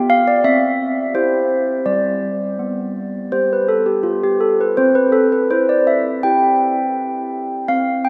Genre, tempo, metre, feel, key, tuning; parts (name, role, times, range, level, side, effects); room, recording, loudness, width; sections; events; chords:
classical, tune for handbells; 83 BPM; 4/4; straight; C major; A4 = 440 Hz
handbells; solo; 0.0-8.1 s; G3 to G5; -17 LUFS; equal
wet cathedral reverb, RT60 5.1 s; heard from further back in the room; -17 LUFS; mono
0.0-8.1 A section
0.4 C; 1.9 G; 4.8 C